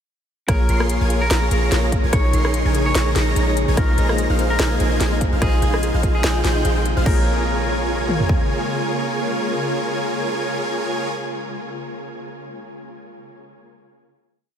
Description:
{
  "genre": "future bass",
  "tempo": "146 BPM",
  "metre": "4/4",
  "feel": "swing 55% on 16ths, half-time",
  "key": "Bb minor",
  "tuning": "A4 = 439 Hz",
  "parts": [
    { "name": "electric guitar at the edge of break-up", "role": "melody", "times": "0.5-11.4 s", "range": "Ab4 to Db5", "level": "-28 LUFS", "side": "equal", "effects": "sidechain pumping, diffuse ambient delay" },
    { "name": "tine electric piano", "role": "accompaniment", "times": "0.5-11.5 s", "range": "Bb3 to Eb5", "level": "-28 LUFS", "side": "left 2 dB", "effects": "overdrive, fast stereo tremolo, sidechain pumping, diffuse ambient delay" },
    { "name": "shimmering ambient pad", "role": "sustained chords", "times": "1.6-11.1 s", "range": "C3 to F4", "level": "-30 LUFS", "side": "left 1 dB", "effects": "chorus, built-in reverb, phaser, sidechain pumping" },
    { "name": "airy dreamy lead", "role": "arpeggios", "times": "0.5-11.1 s", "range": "F6 to C7", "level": "-32 LUFS", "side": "equal", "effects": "chorus, sidechain pumping" },
    { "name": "supersaw chords", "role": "riff", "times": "0.5-11.1 s", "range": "Eb4 to C6", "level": "-25 LUFS", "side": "right 1 dB", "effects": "sidechain pumping, diffuse ambient delay" },
    { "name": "warm 808-style bass", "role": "bass", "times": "0.5-8.3 s", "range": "Bb1", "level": "-20 LUFS", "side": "equal", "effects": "sidechain pumping" },
    { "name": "big-room dance drum kit", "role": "drums", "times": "0.5-8.4 s", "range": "kick drum, toms", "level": "-19 LUFS", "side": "equal", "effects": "overdrive" },
    { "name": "trap drum kit", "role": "drums", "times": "0.5-7.2 s", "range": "crash cymbal, hi-hat, rim click, snare drum", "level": "-26 LUFS", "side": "equal", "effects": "none" },
    { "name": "wide unison pluck", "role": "arpeggios", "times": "3.8-7.3 s", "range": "Ab4 to Eb6", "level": "-37 LUFS", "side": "left 2 dB", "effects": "none" }
  ],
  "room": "moderate huge ambient reverb, RT60 8.2 s",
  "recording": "dreamy mix soaked in reverb",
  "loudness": "-17 LUFS",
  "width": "side -8 dB against mid",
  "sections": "0.5-7.1 drop; 7.1-10.3 final chord",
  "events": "drop 0.5-7.1",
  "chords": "0.5 Bbm7; 2.1 Eb7sus4/Bb; 3.8 Ab69/Bb; 5.4 Fm7/Bb; 7.1 Bbm7"
}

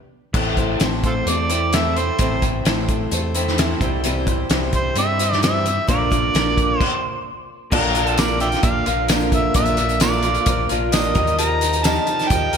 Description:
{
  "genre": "folk rock and heartland rock",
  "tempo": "131 BPM",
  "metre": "4/4",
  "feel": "straight",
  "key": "unclear",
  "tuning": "A4 = 440 Hz",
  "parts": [
    { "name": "picked acoustic archtop guitar", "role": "accompaniment", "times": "0.3-12.6 s", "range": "A2 to C5", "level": "-26 LUFS", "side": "left 5 dB", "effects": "none" },
    { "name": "electric guitar through a small old amp", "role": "riff", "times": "0.3-12.6 s", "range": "A2 to Bb4", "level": "-25 LUFS", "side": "right 2 dB", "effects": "wide subtle chorus, slapback echo" },
    { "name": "fingered electric bass", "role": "bass", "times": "0.3-12.6 s", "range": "A1 to G2", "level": "-24 LUFS", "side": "equal", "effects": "none" },
    { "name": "loose indie drum kit", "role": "drums", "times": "0.3-12.6 s", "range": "crash cymbal, hi-hat, kick drum, snare drum", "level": "-21 LUFS", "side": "equal", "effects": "none" },
    { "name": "overdriven harmonica", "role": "melody", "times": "1.1-12.6 s", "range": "F4 to Bb5", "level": "-22 LUFS", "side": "right 2 dB", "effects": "slapback echo" },
    { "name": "warm grand piano", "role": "accompaniment", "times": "7.7-12.6 s", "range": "F4 to E5", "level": "-33 LUFS", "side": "right 5 dB", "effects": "none" },
    { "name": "tambourine", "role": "percussion", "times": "8.2-11.9 s", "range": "none", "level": "-33 LUFS", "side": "right 7 dB", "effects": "none" }
  ],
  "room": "moderate lush hall reverb, RT60 1.9 s",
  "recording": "big arena sound",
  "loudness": "-16 LUFS",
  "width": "side -7 dB against mid",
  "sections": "0.3-7.7 A section; 7.7-12.6 B section",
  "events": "stop 0.0-0.3, 6.8-7.7",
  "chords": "0.3 Am; 3.8 C; 5.9 Bb; 11.2 Ebadd9"
}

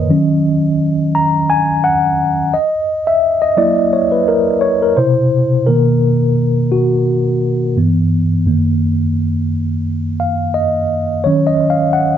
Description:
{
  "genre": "R&B",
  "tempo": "86 BPM",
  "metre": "4/4",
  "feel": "swing 55% on 16ths",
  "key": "unclear",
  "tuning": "A4 = 440 Hz",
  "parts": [
    { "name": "mellow tine electric piano", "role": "solo", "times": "0.0-12.2 s", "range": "Gb2 to Bb5", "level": "-12 LUFS", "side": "equal", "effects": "medium stereo tremolo" }
  ],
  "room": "wet studio ambience, RT60 0.5 s",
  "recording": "dark, warm production, nothing above 7.6 kHz",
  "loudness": "-12 LUFS",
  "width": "side -10 dB against mid",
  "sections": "0.0-5.7 A section; 5.7-12.2 B section",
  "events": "tine electric piano solo 0.0-5.7, 5.7-12.2",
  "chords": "0.1 Ebm7; 2.5 Gb7; 5.0 Cmaj7; 5.7 Bmaj7; 7.8 G6; 8.5 Gb6; 11.3 Ebm7"
}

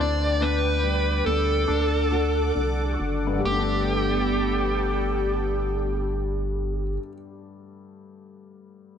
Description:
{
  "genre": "pop",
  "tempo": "67-72 BPM",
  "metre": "4/4",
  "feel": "straight",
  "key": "G major",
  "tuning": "A4 = 440 Hz",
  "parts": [
    { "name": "dark smooth lead guitar", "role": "melody", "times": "0.0-7.0 s", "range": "G4 to D5", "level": "-26 LUFS", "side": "equal", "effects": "overdrive" },
    { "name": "clear baby grand piano", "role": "accompaniment", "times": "0.0-9.0 s", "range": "G2 to D4", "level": "-31 LUFS", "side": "left 4 dB", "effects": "none" },
    { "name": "sweeping resonant pad", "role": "sustained chords", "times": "0.0-7.0 s", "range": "B3 to D6", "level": "-32 LUFS", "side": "right 2 dB", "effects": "chorus" },
    { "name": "nylon-string guitar", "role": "arpeggios", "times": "0.0-7.1 s", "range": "D3 to A4", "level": "-33 LUFS", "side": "left 1 dB", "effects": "digital delay" },
    { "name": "saturated sub bass", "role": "bass", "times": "0.0-7.0 s", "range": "F#1 to D2", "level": "-27 LUFS", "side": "right 1 dB", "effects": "none" }
  ],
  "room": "light reverb",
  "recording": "none",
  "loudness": "-22 LUFS",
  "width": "side -8 dB against mid",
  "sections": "0.0-3.4 A section; 3.4-7.0 B section",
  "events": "slowing down 0.0-3.4",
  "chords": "0.0 G/D; 1.7 D; 3.4 Gadd9"
}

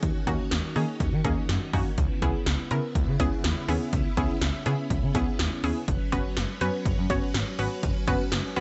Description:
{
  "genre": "synth-pop",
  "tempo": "123 BPM",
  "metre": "4/4",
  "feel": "straight",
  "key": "unclear",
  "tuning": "A4 = 443 Hz",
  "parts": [
    { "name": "string machine, violins", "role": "sustained chords", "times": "0.0-8.6 s", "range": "C#3 to B4", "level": "-37 LUFS", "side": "equal", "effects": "ensemble chorus" },
    { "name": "smooth gliding synth bass", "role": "bass", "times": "0.0-8.6 s", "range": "F#1 to D#3", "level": "-31 LUFS", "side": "equal", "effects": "transformer saturation" },
    { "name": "80s electronic pad drums", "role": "drums", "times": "0.0-8.6 s", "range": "hi-hat, kick drum, snare drum", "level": "-31 LUFS", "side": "equal", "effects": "none" },
    { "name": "unison pluck", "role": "accompaniment", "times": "0.3-8.6 s", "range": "A#3 to C#5", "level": "-33 LUFS", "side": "equal", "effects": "none" }
  ],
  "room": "little or no reverb",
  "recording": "dry, gritty hardware recording, nothing above 7.9 kHz",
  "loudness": "-27 LUFS",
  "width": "mono",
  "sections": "0.0-8.6 A section",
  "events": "none",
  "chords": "0.0 D#m7; 2.0 C#m7; 5.9 F#sus4"
}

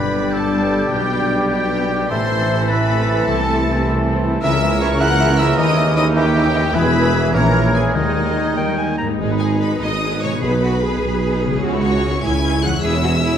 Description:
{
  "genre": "classical, dramatic, fast romantic movement for symphony orchestra",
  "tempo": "101 BPM (dotted quarters)",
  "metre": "6/8",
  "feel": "rubato",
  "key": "G# minor from 4.4 s",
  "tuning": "A4 = 440 Hz",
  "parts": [
    { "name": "clear symphonic violin section", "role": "melody", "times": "0.0-13.4 s", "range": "D#5 to G#6", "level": "-27 LUFS", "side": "left 2 dB", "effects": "none" },
    { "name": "bright clarinet", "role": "second line", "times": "0.0-9.1 s", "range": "C#5 to A#5", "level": "-28 LUFS", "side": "left 1 dB", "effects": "none" },
    { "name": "clear symphonic violin section", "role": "second line", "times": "0.0-13.4 s", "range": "D#4 to G#5", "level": "-26 LUFS", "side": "left 2 dB", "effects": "none" },
    { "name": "mellow flute section", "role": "second line", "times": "0.0-9.0 s", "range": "A#5 to A6", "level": "-28 LUFS", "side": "left 2 dB", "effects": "none" },
    { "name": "warm oboe", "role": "second line", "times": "0.0-9.0 s", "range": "D#4 to F#5", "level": "-26 LUFS", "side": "equal", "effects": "none" },
    { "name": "mellow bassoon", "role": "accompaniment", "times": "0.0-9.0 s", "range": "D#3 to G3", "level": "-26 LUFS", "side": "right 2 dB", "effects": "none" },
    { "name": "rich symphonic viola section", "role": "accompaniment", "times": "0.0-13.4 s", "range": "D#3 to C#5", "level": "-27 LUFS", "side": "equal", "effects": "none" },
    { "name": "bright trombone section", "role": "sustained chords", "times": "0.0-9.0 s", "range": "A#2 to G3", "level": "-27 LUFS", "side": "right 3 dB", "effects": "none" },
    { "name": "mellow French horn section", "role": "sustained chords", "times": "0.0-9.0 s", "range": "G3 to E4", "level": "-26 LUFS", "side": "left 2 dB", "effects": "none" },
    { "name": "concert harp", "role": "arpeggios", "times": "0.0-13.4 s", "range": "E2 to C#6", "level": "-25 LUFS", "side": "left 8 dB", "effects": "none" },
    { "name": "clear trumpet", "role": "stabs", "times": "0.0-9.0 s", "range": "G4 to A#4", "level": "-26 LUFS", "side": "right 2 dB", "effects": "none" },
    { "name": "mellow tuba", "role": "bass", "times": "0.0-13.4 s", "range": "E1 to D#2", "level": "-23 LUFS", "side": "right 3 dB", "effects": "none" },
    { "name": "rich symphonic cello section", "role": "bass", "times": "0.0-13.4 s", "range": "D#2 to G#4", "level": "-25 LUFS", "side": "right 1 dB", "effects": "none" },
    { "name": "rich symphonic double bass section", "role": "bass", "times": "0.0-13.4 s", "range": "E1 to E2", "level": "-24 LUFS", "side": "right 2 dB", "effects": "none" },
    { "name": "timpani", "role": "percussion", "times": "8.0-11.0 s", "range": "B2 to D#3", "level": "-31 LUFS", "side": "left 2 dB", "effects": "none" }
  ],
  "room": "wet scoring stage reverb, RT60 1.6 s",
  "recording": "dark, warm production",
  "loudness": "-15 LUFS",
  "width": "side -8 dB against mid",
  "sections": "0.0-9.2 A section; 9.2-13.4 B section",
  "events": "none",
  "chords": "0.0 G; 0.9 G/B; 2.1 Am; 3.3 Am/C; 4.4 A#m7b5/C#; 5.6 D#7b9; 6.7 E; 7.3 A#m7b5; 8.0 D#sus4; 8.6 D#; 9.2 G#m; 10.4 G#m/B; 11.6 C#m; 12.8 C#m/E"
}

